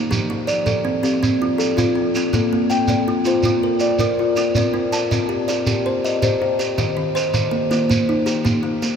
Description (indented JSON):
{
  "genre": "southern african traditional, mbira-style interlocking cycle",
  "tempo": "108 BPM (dotted quarters)",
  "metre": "12/8",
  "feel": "straight",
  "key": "C dorian",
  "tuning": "A4 = 440 Hz",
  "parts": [
    { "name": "kalimba", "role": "arpeggios", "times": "0.0-9.0 s", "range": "Eb3 to A5", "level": "-20 LUFS", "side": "left 2 dB", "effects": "none" },
    { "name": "kalimba", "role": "arpeggios", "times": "0.0-9.0 s", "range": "Eb3 to A5", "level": "-22 LUFS", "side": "right 3 dB", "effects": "none" },
    { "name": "shekere", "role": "percussion", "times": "0.1-9.0 s", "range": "none", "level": "-24 LUFS", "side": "right 2 dB", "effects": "none" }
  ],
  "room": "wet huge ambient reverb, RT60 8.1 s",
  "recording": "in a vast, echoing space",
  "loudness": "-17 LUFS",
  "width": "side -7 dB against mid",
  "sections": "0.0-9.0 A section",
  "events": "none",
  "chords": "0.1 F; 2.3 Bb; 4.6 Cm; 6.8 Eb",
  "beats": "| 0.11 0.67 1.22 1.78 | 2.33 2.89 3.44 4.00 | 4.55 5.11 5.67 6.22 | 6.78 7.33 7.89 8.45"
}